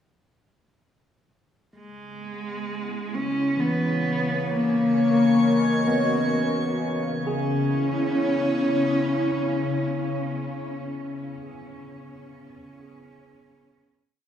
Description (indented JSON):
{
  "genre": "ambient",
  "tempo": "65 BPM",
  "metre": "3/4",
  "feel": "straight",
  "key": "C# dorian",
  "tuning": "A4 = 441 Hz",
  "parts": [
    { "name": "airy breathy pad", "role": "sustained chords", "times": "1.7-10.8 s", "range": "C#3 to D#5", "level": "-28 LUFS", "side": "equal", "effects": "chorus, shimmer reverb" },
    { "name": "overdriven tine electric piano", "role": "arpeggios", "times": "1.7-12.6 s", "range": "E3 to G#4", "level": "-30 LUFS", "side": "right 1 dB", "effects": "diffuse ambient delay" },
    { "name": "overtone-sweeping drone", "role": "drone", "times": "3.2-10.9 s", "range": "C#3 to C#4", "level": "-34 LUFS", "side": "left 3 dB", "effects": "chorus, built-in reverb, phaser" },
    { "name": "warm cello", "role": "melody", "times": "1.8-10.8 s", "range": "G#3 to C#4", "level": "-25 LUFS", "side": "left 1 dB", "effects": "shimmer reverb, diffuse ambient delay" },
    { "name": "drifting glass-harmonics texture", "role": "texture", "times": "4.7-7.3 s", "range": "C#5 to C#6", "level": "-33 LUFS", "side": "right 1 dB", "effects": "chorus, built-in reverb, shimmer reverb" }
  ],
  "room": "wet cathedral reverb, RT60 5.4 s",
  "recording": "in a vast, echoing space, small room ambience",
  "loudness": "-21 LUFS",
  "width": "side -9 dB against mid",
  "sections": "1.7-7.3 A section; 7.3-10.0 final chord",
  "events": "fade-in on analog synth pad 1.7-7.3; fade-in on tine electric piano 1.7-7.3; fade-in on synth drone 1.7-7.3",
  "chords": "1.7 C#m7; 4.5 Bmaj9/C#; 7.3 C#m7"
}